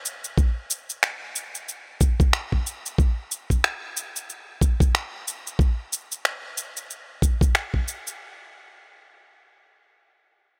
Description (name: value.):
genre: organic downtempo.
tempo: 92 BPM.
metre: 4/4.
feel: swing 58% on 16ths.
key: none.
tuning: none.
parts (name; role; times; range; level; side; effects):
electronic shaker and finger snaps; drums; 0.1-8.2 s; none; -29 LUFS; equal; none.
electronic kick drum; drums; 0.4-7.8 s; none; -22 LUFS; equal; none.
room: light reverb.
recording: none.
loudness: -25 LUFS.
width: mono.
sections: 0.0-8.2 A section.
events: none.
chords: none.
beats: | 0.37 1.02 1.68 2.33 | 2.98 3.63 4.28 4.94 | 5.59 6.24 6.89 7.54.